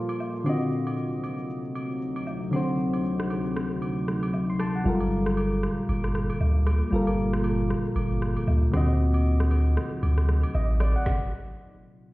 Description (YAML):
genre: amapiano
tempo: 116 BPM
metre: 4/4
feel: swing 58% on 16ths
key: unclear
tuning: A4 = 440 Hz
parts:
  - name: soft electric-piano-like synth keys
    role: accompaniment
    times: 0.0-11.2 s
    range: D3 to C6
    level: -28 LUFS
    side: left 1 dB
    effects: chorus
  - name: deep dark ambient pad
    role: sustained chords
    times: 0.0-11.0 s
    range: D2 to F4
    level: -30 LUFS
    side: equal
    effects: chorus, built-in reverb, sidechain pumping
  - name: afro-pop drum kit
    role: drums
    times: 0.1-11.2 s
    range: kick drum, rim click, shaker, snare drum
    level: -34 LUFS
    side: equal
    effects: none
  - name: agogo bells and woodblock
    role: percussion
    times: 0.1-10.9 s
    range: none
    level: -42 LUFS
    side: right 1 dB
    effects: none
  - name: punchy sub bass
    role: bass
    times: 4.9-11.0 s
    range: G1 to D2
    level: -23 LUFS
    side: equal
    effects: none
  - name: reverse cymbal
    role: sound effects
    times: 12.1 s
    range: none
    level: -72 LUFS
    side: right 1 dB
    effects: none
room: light reverb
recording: heard muffled through a wall, stone room reverb, EQ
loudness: -23 LUFS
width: side -19 dB against mid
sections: 0.0-12.1 A section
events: stop 11.1-12.1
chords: 0.5 D7b9; 4.9 Gm9; 8.7 D7b9